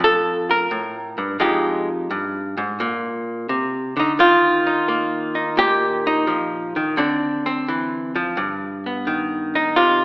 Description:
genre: solo jazz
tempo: 86 BPM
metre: 4/4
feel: swing 68% on 8ths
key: Bb major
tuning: A4 = 440 Hz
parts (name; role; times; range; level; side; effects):
- archtop guitar, miked and amplified; solo; 0.0-10.0 s; F2 to Bb4; -18 LUFS; equal; none
room: wet recital hall reverb, RT60 1.5 s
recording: recorded in a church or concert hall, AM radio sound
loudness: -18 LUFS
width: side -25 dB against mid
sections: 0.0-10.0 A section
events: none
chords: 0.0 Bb5; 1.4 Fm9; 2.8 Bbadd9; 4.2 Ebadd9; 7.0 Dm9; 8.4 Gaug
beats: 0.01 0.71 | 1.41 2.10 2.80 3.50 | 4.19 4.89 5.59 6.29 | 6.98 7.68 8.38 9.07 | 9.77

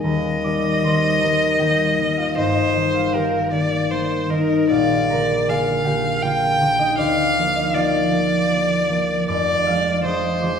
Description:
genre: classical, romantic duo for violin and harp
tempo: 78 BPM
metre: 3/4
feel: uneven beats, rubato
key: Eb major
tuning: A4 = 440 Hz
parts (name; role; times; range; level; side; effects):
- rich violin; melody; 0.0-10.6 s; Bb4 to G5; -20 LUFS; equal; none
- concert harp; accompaniment; 0.0-10.6 s; Eb1 to F6; -19 LUFS; left 1 dB; none
room: wet recital hall reverb, RT60 1.5 s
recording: heard from further back in the room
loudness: -17 LUFS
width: side -7 dB against mid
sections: 0.0-10.6 A section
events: none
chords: 0.0 Eb; 2.4 Eb/G; 4.7 Bb; 7.0 Bb/D; 9.3 Ddim/F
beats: | 0.04 0.83 1.60 | 2.37 3.14 3.90 | 4.70 5.49 6.23 | 6.98 7.74 8.49 | 9.29 10.05

